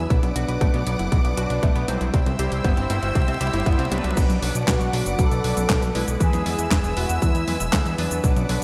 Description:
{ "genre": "italo disco", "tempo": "118 BPM", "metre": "4/4", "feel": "straight", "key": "B dorian", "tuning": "A4 = 440 Hz", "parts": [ { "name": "rich studio string section", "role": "sustained chords", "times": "0.0-8.6 s", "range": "B4 to E6", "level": "-33 LUFS", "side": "equal", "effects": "shimmer reverb" }, { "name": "analog pluck", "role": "arpeggios", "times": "0.0-4.1 s", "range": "F#3 to C5", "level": "-33 LUFS", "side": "equal", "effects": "chorus, delay, shimmer reverb" }, { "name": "chorused polysynth", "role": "stabs", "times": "0.0-8.6 s", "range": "F#3 to C5", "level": "-31 LUFS", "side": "equal", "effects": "delay, shimmer reverb" }, { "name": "fat analog bass", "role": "bass", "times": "0.0-8.6 s", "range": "E1 to E2", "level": "-28 LUFS", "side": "equal", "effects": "none" }, { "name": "clean 12-bit digital drum machine", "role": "drums", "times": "0.1-8.6 s", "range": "cabasa, crash cymbal, handclaps, hi-hat, snare drum, toms", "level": "-30 LUFS", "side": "equal", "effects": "overdrive, high-pass filter on hats, high-pass filter on toms, high-pass filter on cymbals, high-pass filter on perc, high-pass filter on snare, high-pass filter on room" }, { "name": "electronic kick drum", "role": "drums", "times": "0.1-8.3 s", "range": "none", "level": "-23 LUFS", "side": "equal", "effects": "none" }, { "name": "mellow synth brass", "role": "melody", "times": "4.7-7.7 s", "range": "E4 to A4", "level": "-31 LUFS", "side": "equal", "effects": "chorus, delay, shimmer reverb" } ], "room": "moderate lush hall reverb, RT60 1.7 s, digital ambience", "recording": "bright 1980s-style digital production", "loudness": "-22 LUFS", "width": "mono", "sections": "0.0-4.2 A section; 4.2-8.6 B section", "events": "drum fill 0.0-4.2; filter sweep on analog polysynth 0.0-4.2", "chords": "0.1 Bm; 2.1 C; 4.2 Bm; 6.2 E" }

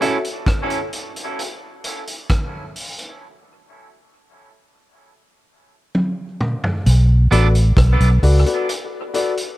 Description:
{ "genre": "dub reggae", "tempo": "66 BPM", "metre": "4/4", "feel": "straight", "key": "B minor", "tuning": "A4 = 439 Hz", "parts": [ { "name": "electric guitar at the edge of break-up", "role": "accompaniment", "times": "0.0-0.2, 7.3-7.5 s", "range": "B3 to A4", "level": "-26 LUFS", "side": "right 4 dB", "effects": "dub echo" }, { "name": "warm baby grand piano", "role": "stabs", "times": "0.0-0.2, 7.3-9.3 s", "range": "F#4 to E5", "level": "-24 LUFS", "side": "left 4 dB", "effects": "dub echo" }, { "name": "vintage drum kit", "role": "drums", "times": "0.0-9.6 s", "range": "hi-hat, kick drum, rim click, toms", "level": "-22 LUFS", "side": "equal", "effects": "dub echo" }, { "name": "vintage muted fingered electric bass", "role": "bass", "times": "6.9-8.4 s", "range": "A1 to C#2", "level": "-12 LUFS", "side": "equal", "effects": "none" } ], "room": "studio reverb", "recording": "echo-heavy mix", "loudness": "-15 LUFS", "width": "side -17 dB against mid", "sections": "0.0-6.9 A section; 6.9-9.6 B section", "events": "break 0.0-6.9; drum fill 5.9-6.9", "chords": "0.0 F#m7; 3.2 N.C.; 6.9 Bm7" }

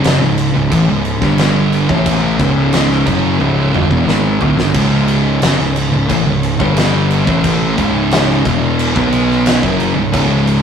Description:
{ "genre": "stoner and doom metal", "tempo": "89 BPM", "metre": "4/4", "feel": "straight", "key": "C# phrygian", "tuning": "A4 = 439 Hz", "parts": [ { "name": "thick fuzz guitar", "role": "riff", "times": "0.0-10.6 s", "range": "C#2 to B3", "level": "-16 LUFS", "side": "left 4 dB", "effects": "distortion" }, { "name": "thick fuzz guitar", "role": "riff", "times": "0.0-10.6 s", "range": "C#2 to B3", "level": "-16 LUFS", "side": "right 5 dB", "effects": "distortion" }, { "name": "fuzz picked electric bass", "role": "bass", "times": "0.0-10.6 s", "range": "C#1 to B1", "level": "-19 LUFS", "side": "equal", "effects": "overdrive" }, { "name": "oversized low-tuned drum kit", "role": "drums", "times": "0.0-10.6 s", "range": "crash cymbal, kick drum, snare drum, toms", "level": "-17 LUFS", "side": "equal", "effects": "none" } ], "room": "light reverb", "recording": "rough rehearsal-room recording, tube saturation", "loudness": "-11 LUFS", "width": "side -7 dB against mid", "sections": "0.0-10.6 A section", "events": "drum fill 3.4-4.7", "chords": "0.0 C#m; 1.2 G5; 1.9 C#m; 6.6 G5; 7.3 C#m; 9.0 B5; 9.6 C#5" }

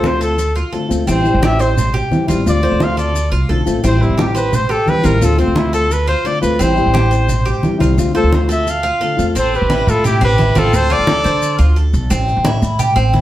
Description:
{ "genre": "latin, Cuban son and guajira", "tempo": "174 BPM", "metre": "4/4", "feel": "straight", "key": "A minor", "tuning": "A4 = 439 Hz", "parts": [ { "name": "clear trumpet", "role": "melody", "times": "0.0-11.6 s", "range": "C4 to F5", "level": "-18 LUFS", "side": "equal", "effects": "none" }, { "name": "nylon-string guitar", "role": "accompaniment", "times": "0.0-9.4 s", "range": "D3 to F4", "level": "-18 LUFS", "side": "left 2 dB", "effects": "none" }, { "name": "Cuban tres", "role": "arpeggios", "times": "0.0-13.2 s", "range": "C4 to C5", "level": "-21 LUFS", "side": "right 1 dB", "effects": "none" }, { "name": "upright bass", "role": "bass", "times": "0.0-13.2 s", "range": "A1 to D3", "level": "-16 LUFS", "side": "equal", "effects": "none" }, { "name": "congas", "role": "percussion", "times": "0.0-13.2 s", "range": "none", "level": "-21 LUFS", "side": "right 1 dB", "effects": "none" }, { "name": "maracas", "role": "percussion", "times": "0.0-13.2 s", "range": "none", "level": "-32 LUFS", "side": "left 4 dB", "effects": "none" }, { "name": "clear trumpet", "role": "second line", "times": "9.4-11.6 s", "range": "E4 to A4", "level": "-23 LUFS", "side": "left 2 dB", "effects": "slapback echo" } ], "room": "wet studio reverb, RT60 0.7 s", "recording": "heard from further back in the room", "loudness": "-12 LUFS", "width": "side -14 dB against mid", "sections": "0.0-9.4 A section; 9.4-13.2 B section", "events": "trumpet solo 0.0-9.4", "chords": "0.0 Dm7; 1.1 Am7; 2.5 Dm7; 3.8 Am7; 5.2 Dm7; 6.6 Am7; 8.0 Dm7; 9.4 Am7; 10.7 Dm7; 12.1 Am7" }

